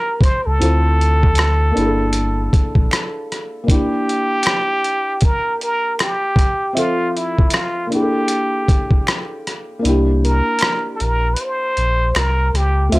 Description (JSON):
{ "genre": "lo-fi hip hop", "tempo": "78 BPM", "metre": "4/4", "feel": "swing 60% on 16ths", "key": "unclear", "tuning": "A4 = 440 Hz", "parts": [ { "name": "trumpet with plunger mute", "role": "melody", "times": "0.0-13.0 s", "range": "E4 to C5", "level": "-20 LUFS", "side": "equal", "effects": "low-pass filter" }, { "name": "felt-muted upright piano", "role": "accompaniment", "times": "0.0-13.0 s", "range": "F3 to E5", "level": "-22 LUFS", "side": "equal", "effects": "low-pass filter" }, { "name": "dusty soul sampler-style drum kit", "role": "drums", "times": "0.2-13.0 s", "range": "hi-hat, kick drum, rim click", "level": "-17 LUFS", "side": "equal", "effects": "none" }, { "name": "sub bass with octave", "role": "bass", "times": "0.5-2.9, 9.8-13.0 s", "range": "G1 to D2", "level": "-16 LUFS", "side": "equal", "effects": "transformer saturation" }, { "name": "finger snaps", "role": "percussion", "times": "1.4-12.4 s", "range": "none", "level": "-30 LUFS", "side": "left 1 dB", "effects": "none" } ], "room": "light reverb", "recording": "dry, gritty hardware recording, cassette tape", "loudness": "-15 LUFS", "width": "side -21 dB against mid", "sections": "0.0-9.8 A section; 9.8-13.0 B section", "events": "kick muted 9.8-13.0", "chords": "0.0 C9; 0.6 Dm9; 1.8 Gm69; 3.7 Gm6/Bb; 6.8 Fmaj7; 7.9 Gm69; 9.8 C9", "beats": "| 0.60 1.38 2.14 2.91 | 3.68 4.45 5.22 5.99 | 6.76 7.53 8.30 9.07 | 9.84 10.61 11.38 12.14 | 12.91" }